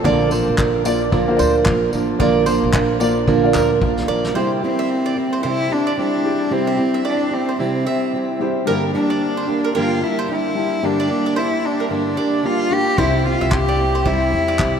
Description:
acoustic pop; 111 BPM; 4/4; swing 60% on 16ths; A4 = 440 Hz
felt-muted upright piano; accompaniment; 0.0-14.8 s; G3 to Bb5; -25 LUFS; left 6 dB
fingerpicked plugged-in steel-string acoustic guitar; accompaniment; 0.0-14.8 s; G2 to Bb4; -20 LUFS; right 4 dB
mandolin; arpeggios; 0.0-14.6 s; Bb4 to E5; -26 LUFS; right 3 dB
upright bass; bass; 0.0-4.3, 13.0-14.8 s; A1 to E2; -24 LUFS; left 1 dB
vintage brush drum kit; drums; 0.0-4.3, 13.0-14.7 s; handclaps, kick drum, snare drum, tambourine; -23 LUFS; left 1 dB
warm cello; melody; 4.6-14.8 s; C4 to G4; -21 LUFS; left 2 dB
wet cathedral reverb, RT60 5.8 s; in a vast, echoing space; -16 LUFS; side -7 dB against mid
0.0-4.4 A section; 4.4-14.8 B section
felt piano fill 3.3-4.4; drum fill 3.8-4.4
0.0 Bb; 4.4 C; 8.7 Gm; 13.0 C

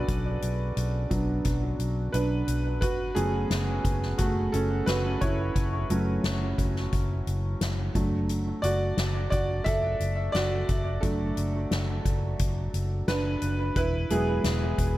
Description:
piano-driven pop; 88 BPM; 4/4; straight; F# minor; A4 = 440 Hz
clear upright piano; accompaniment; 0.0-15.0 s; F#3 to E5; -29 LUFS; right 1 dB; analog delay
vintage muted fingered electric bass; bass; 0.0-15.0 s; E1 to B1; -29 LUFS; equal
soft-mallet drum kit; drums; 0.1-14.9 s; hi-hat, kick drum, snare drum; -31 LUFS; left 1 dB
light reverb, small room ambience; echo-heavy mix; -25 LUFS; side -16 dB against mid
0.0-15.0 A section
upright piano solo 0.0-15.0
0.0 Bm; 2.8 F#m; 8.0 D/F#; 13.8 Eadd9

